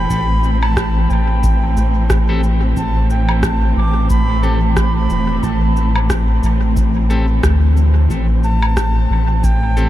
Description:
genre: ambient dub.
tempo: 90 BPM.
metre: 4/4.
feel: swing 57% on 16ths.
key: A minor.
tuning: A4 = 445 Hz.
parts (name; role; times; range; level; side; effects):
reedy silver concert flute; melody; 0.0-9.9 s; G5 to D6; -24 LUFS; right 1 dB; dub echo.
warm studio string section; sustained chords; 0.0-9.9 s; A2 to C4; -20 LUFS; right 1 dB; none.
soft dub sub bass; bass; 0.0-9.9 s; E1 to D2; -15 LUFS; equal; none.
electronic kick drum; drums; 0.1-9.6 s; none; -21 LUFS; equal; none.
electronic shaker, woodblock and rim click; drums; 0.1-9.9 s; none; -26 LUFS; equal; dub echo.
clean electric guitar; stabs; 2.3-9.9 s; C4 to A4; -30 LUFS; left 3 dB; dub echo.
room: moderate huge ambient reverb, RT60 8.7 s.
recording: dreamy mix soaked in reverb.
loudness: -13 LUFS.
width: side -13 dB against mid.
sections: 0.0-9.9 A section.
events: none.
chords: 0.0 Am.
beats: | 0.10 0.77 1.44 2.10 | 2.77 3.44 4.10 4.77 | 5.43 6.10 6.77 7.43 | 8.10 8.77 9.44.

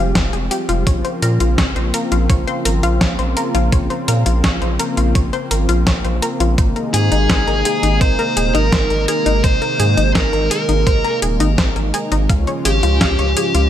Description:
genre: synthwave.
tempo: 84 BPM.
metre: 4/4.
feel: straight.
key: unclear.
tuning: A4 = 437 Hz.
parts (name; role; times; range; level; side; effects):
warm analog pad; sustained chords; 0.0-13.7 s; Ab2 to G4; -22 LUFS; left 1 dB; chorus, sidechain pumping.
analog pluck; arpeggios; 0.0-13.7 s; Eb4 to F5; -23 LUFS; left 3 dB; chorus, ping-pong delay.
round analog bass; bass; 0.0-13.7 s; Eb1 to Bb2; -18 LUFS; equal; tube saturation, sidechain pumping.
detuned 8-bit digital drum machine; drums; 0.2-13.7 s; hi-hat, snare drum; -21 LUFS; equal; studio reverb, gated reverb.
electronic kick drum; drums; 0.2-13.2 s; none; -18 LUFS; equal; studio reverb.
dark smooth lead guitar; melody; 6.9-13.7 s; G4 to C5; -19 LUFS; equal; overdrive, ping-pong delay.
room: light reverb.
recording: none.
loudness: -14 LUFS.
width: side -11 dB against mid.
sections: 0.0-13.7 A section.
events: none.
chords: 0.0 Fmadd9; 0.9 Bbmadd9; 6.6 Abadd9; 12.3 Db.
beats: 0.15 | 0.87 1.58 2.30 3.01 | 3.72 4.44 5.15 5.87 | 6.58 7.30 8.01 8.72 | 9.44 10.15 10.87 11.58 | 12.30 13.01.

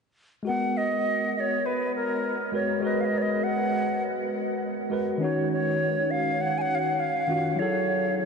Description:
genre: chillout.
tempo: 101 BPM.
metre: 4/4.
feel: straight.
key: G# minor.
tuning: A4 = 444 Hz.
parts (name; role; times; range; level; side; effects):
tine electric piano; accompaniment; 0.4-8.3 s; D#3 to B4; -27 LUFS; equal; auto-pan, low-pass filter, ping-pong delay.
bright wooden flute; melody; 0.5-8.3 s; A#4 to G#5; -26 LUFS; equal; ping-pong delay.
room: wet huge ambient reverb, RT60 8.5 s.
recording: dreamy mix soaked in reverb, nothing above 10.4 kHz.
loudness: -24 LUFS.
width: side -5 dB against mid.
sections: 0.5-8.3 A section.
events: filter sweep on tine electric piano 0.5-8.3.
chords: 0.5 G#m9; 5.2 D#m9; 7.6 F#m9.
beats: | 0.46 1.05 1.64 2.24 | 2.83 3.43 4.02 4.62 | 5.21 5.80 6.40 6.99 | 7.58 8.18.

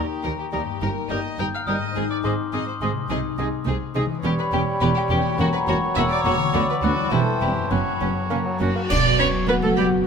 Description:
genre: cinematic, playful, whimsical film cue.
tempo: 104 BPM.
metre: 2/4.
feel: straight.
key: B minor from 4.2 s.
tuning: A4 = 440 Hz.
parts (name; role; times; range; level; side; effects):
glockenspiel with rubber mallets; melody; 0.0-8.3 s; G5 to G6; -29 LUFS; left 6 dB; none.
warm chamber violin section; melody; 0.0-9.8 s; C#4 to B5; -32 LUFS; left 3 dB; none.
rich chamber violin section; second line; 0.0-9.9 s; B3 to G5; -31 LUFS; equal; none.
warm oboe; second line; 0.0-10.1 s; F#4 to Bb5; -31 LUFS; right 2 dB; none.
warm bassoon; accompaniment; 0.0-8.8 s; E3 to A#3; -31 LUFS; right 3 dB; none.
warm chamber viola section; accompaniment; 0.0-9.9 s; G3 to D5; -27 LUFS; right 2 dB; none.
dark French horn section; sustained chords; 0.0-10.1 s; G3 to F#4; -31 LUFS; left 1 dB; none.
concert harp; arpeggios; 0.0-10.1 s; E2 to D5; -29 LUFS; left 11 dB; none.
dark chamber cello section; bass; 0.0-9.9 s; D2 to D4; -28 LUFS; right 3 dB; none.
warm chamber double bass section; bass; 0.0-10.0 s; E1 to Eb2; -28 LUFS; right 4 dB; none.
mellow large flute ensemble; second line; 0.5-10.0 s; F#5 to Eb6; -32 LUFS; left 1 dB; none.
cymbal swell, clash cymbals and concert bass drum; percussion; 6.5-10.0 s; none; -28 LUFS; equal; none.
room: moderate scoring stage reverb, RT60 1.9 s.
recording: close, detailed microphones.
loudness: -20 LUFS.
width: side -6 dB against mid.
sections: 0.0-8.9 A section; 8.9-10.1 B section.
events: band accent 8.9-9.5.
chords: 0.0 Eb; 0.8 Eb/G; 2.0 Ab; 3.1 Ab/C; 4.2 C#m7b5/E; 5.4 F#7/E; 6.5 Bm/D; 7.1 C/E; 7.7 F#sus4; 8.3 F#; 8.9 Bm.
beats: 0.24 | 0.81 1.38 | 1.96 2.53 | 3.10 3.67 | 4.24 4.81 | 5.39 5.96 | 6.54 7.12 | 7.71 8.31 | 8.90 9.48 | 10.06.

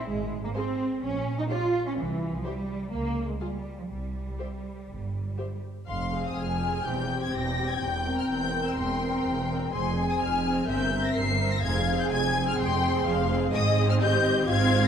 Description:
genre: quick classical-period movement for string orchestra.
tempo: 126 BPM.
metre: 4/4.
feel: straight.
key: F minor.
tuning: A4 = 440 Hz.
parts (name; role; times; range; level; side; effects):
warm symphonic cello section; bass; 0.0-14.9 s; E2 to F4; -31 LUFS; right 2 dB; none.
warm symphonic double bass section; bass; 0.1-14.9 s; E1 to Db2; -31 LUFS; right 2 dB; none.
warm symphonic violin section; melody; 0.6-14.9 s; E5 to C7; -31 LUFS; left 5 dB; none.
warm symphonic violin section; second line; 0.6-14.9 s; Ab4 to Ab5; -32 LUFS; left 3 dB; none.
warm symphonic viola section; accompaniment; 0.6-14.9 s; C4 to Bb4; -30 LUFS; equal; none.
room: moderate scoring stage reverb, RT60 1.8 s.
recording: dark, warm production.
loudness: -25 LUFS.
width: side -8 dB against mid.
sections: 0.0-5.9 A section; 5.9-14.9 B section.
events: none.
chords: 0.1 Fm/Ab (rootless); 1.0 Gm7b5/Bb (rootless); 2.0 C; 2.9 Db; 3.9 C5; 5.9 Fm; 6.9 C/E; 7.8 C7/E; 9.7 Fm; 10.7 C7/G; 11.6 Fm; 13.5 Ab.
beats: | 0.08 0.55 1.02 1.50 | 1.98 2.45 2.93 3.41 | 3.90 4.39 4.89 5.39 | 5.88 6.37 6.85 7.34 | 7.82 8.29 8.77 9.25 | 9.73 10.20 10.68 11.15 | 11.63 12.11 12.59 13.06 | 13.53 14.01 14.48.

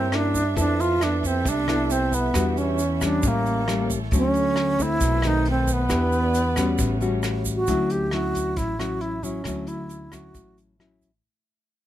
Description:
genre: bossa nova.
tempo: 135 BPM.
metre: 4/4.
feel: straight.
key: D major.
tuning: A4 = 439 Hz.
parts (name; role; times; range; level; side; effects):
breathy bright wooden-headed alto flute; melody; 0.0-10.6 s; Bb3 to G4; -24 LUFS; right 2 dB; none.
nylon-string guitar; accompaniment; 0.0-11.2 s; A2 to A4; -27 LUFS; left 4 dB; none.
dark studio string section; sustained chords; 0.0-7.7 s; G3 to E5; -34 LUFS; right 6 dB; none.
upright bass; bass; 0.0-11.2 s; A1 to G2; -27 LUFS; equal; none.
vintage brush drum kit; drums; 0.1-11.1 s; hi-hat, kick drum, rim click; -30 LUFS; equal; none.
egg shaker; percussion; 0.3-11.2 s; none; -35 LUFS; right 8 dB; none.
room: little or no reverb.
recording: close, detailed microphones.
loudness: -20 LUFS.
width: side -12 dB against mid.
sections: 0.0-7.7 A section; 7.7-11.2 B section.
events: fade-out 7.7-11.2.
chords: 0.0 C7b9; 0.6 Fmaj9#11; 2.3 Em9; 3.2 A7b9; 4.1 Dmaj7; 5.0 B7b9; 5.9 Em7; 6.8 A13; 7.7 Dmaj9.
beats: 0.12 | 0.57 1.01 1.46 1.90 | 2.35 2.79 3.23 3.68 | 4.12 4.57 5.01 5.46 | 5.90 6.34 6.79 7.23 | 7.68 8.12 8.57 9.01 | 9.46 9.90 10.35 10.79.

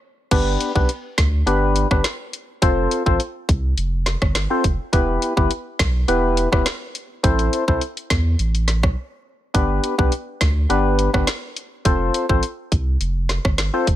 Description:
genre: dancehall.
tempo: 104 BPM.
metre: 4/4.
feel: straight.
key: unclear.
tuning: A4 = 442 Hz.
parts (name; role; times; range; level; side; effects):
percussive organ stab; accompaniment; 0.3-13.9 s; B3 to C5; -20 LUFS; left 2 dB; chorus, sidechain pumping.
saturated sub bass; bass; 0.3-14.0 s; E1 to E2; -21 LUFS; equal; none.
island pop drum kit; drums; 0.3-14.0 s; crash cymbal, hi-hat, kick drum, rim click, snare drum; -20 LUFS; equal; none.
room: little or no reverb.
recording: none.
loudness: -17 LUFS.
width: side -13 dB against mid.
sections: 0.3-14.0 A section.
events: break 0.0-0.3, 9.0-9.5.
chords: 0.3 G; 2.6 F; 4.9 Em; 7.2 Am; 9.5 G; 11.9 F.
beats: | 0.31 0.89 1.47 2.04 | 2.62 3.20 3.78 4.35 | 4.93 5.51 6.08 6.66 | 7.24 7.81 8.39 8.97 | 9.54 10.12 10.70 11.28 | 11.85 12.43 13.01 13.58.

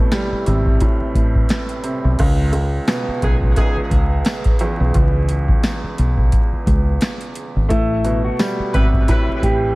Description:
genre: hip hop, boom-bap hip-hop.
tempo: 87 BPM.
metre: 4/4.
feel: swing 56% on 16ths.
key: C# minor.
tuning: A4 = 442 Hz.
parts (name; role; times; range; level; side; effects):
warm upright piano; accompaniment; 0.0-9.8 s; C#2 to A3; -22 LUFS; right 1 dB; cassette tape, high-pass filter, low-pass filter.
deep dub fingered electric bass; bass; 0.0-9.7 s; G#1 to C#2; -18 LUFS; equal; none.
booming analog drum machine; drums; 0.1-9.6 s; crash cymbal, hi-hat, kick drum, snare drum; -18 LUFS; equal; none.
tambourine; percussion; 2.9-8.6 s; none; -43 LUFS; left 4 dB; none.
clear horn section; stabs; 3.2-3.8, 8.7-9.3 s; E3 to B4; -27 LUFS; equal; high-pass filter, low-pass filter, digital delay.
mellow electric guitar; melody; 7.7-9.8 s; E4 to G4; -22 LUFS; left 1 dB; high-pass filter, low-pass filter, digital delay.
room: small room ambience.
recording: vinyl crackle.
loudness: -15 LUFS.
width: side -21 dB against mid.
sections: 0.0-2.2 A section; 2.2-9.8 B section.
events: none.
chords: 0.0 Am9; 2.2 C#m7; 7.7 Am9.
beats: 0.12 0.81 1.50 | 2.19 2.88 3.57 4.26 | 4.95 5.64 6.33 7.02 | 7.71 8.40 9.09.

